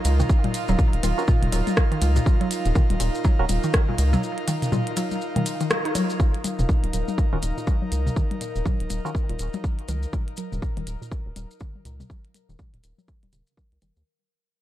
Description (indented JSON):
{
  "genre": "minimal techno",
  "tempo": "122 BPM",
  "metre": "4/4",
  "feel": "swing 60% on 16ths",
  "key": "Eb minor",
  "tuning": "A4 = 440 Hz",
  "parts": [
    { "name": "maracas", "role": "percussion", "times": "0.0-14.0 s", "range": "none", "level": "-38 LUFS", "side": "left 2 dB", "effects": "none" },
    { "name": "airy breathy pad", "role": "texture", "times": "0.0-14.1 s", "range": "Eb4 to F5", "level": "-32 LUFS", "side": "equal", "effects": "chorus, sidechain pumping" },
    { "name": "pulsing gated texture", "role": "texture", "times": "0.0-14.1 s", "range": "F4 to Bb4", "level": "-36 LUFS", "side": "right 4 dB", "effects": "chorus, built-in reverb, sidechain pumping" },
    { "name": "rubbery square bass", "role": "bass", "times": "0.1-14.0 s", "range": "Eb1 to Eb2", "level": "-23 LUFS", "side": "equal", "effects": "sidechain pumping" },
    { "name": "minimal click drum kit", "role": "drums", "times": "0.1-13.9 s", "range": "hi-hat, ride cymbal, rim click", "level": "-30 LUFS", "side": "equal", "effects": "overdrive" },
    { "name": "hollow square pluck", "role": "riff", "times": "0.2-13.9 s", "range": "Bb2 to Eb4", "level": "-30 LUFS", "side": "equal", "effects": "chorus, sidechain pumping, digital delay" },
    { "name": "electronic toms", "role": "percussion", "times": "0.2-13.9 s", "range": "none", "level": "-30 LUFS", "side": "left 2 dB", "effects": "digital delay" },
    { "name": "electronic kick drum", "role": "drums", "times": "0.3-13.7 s", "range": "none", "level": "-21 LUFS", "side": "equal", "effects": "none" },
    { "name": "percussive organ stab", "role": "stabs", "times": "1.2-3.4, 7.3-9.1 s", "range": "Db4 to Bb4", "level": "-33 LUFS", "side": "right 4 dB", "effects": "chorus, phaser, digital delay" }
  ],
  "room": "little or no reverb",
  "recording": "dark, warm production",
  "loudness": "-21 LUFS",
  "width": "side -13 dB against mid",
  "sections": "0.0-6.2 A section; 6.2-14.1 B section",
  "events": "drop 0.0-6.2; break 4.2-6.2; band accent 5.7; fade-out on analog synth pad 6.2-14.1; fade-out 6.2-14.1; filter sweep on synth arpeggio sound 6.2-14.1",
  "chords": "0.0 Ebm7; 6.2 Ebm",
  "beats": "| 0.29 0.79 1.28 1.77 | 2.26 2.75 3.25 3.74 | 4.23 4.72 5.21 5.71 | 6.20 6.69 7.18 7.67 | 8.16 8.66 9.15 9.64 | 10.13 10.62 11.12 11.61 | 12.10 12.59 13.08 13.57"
}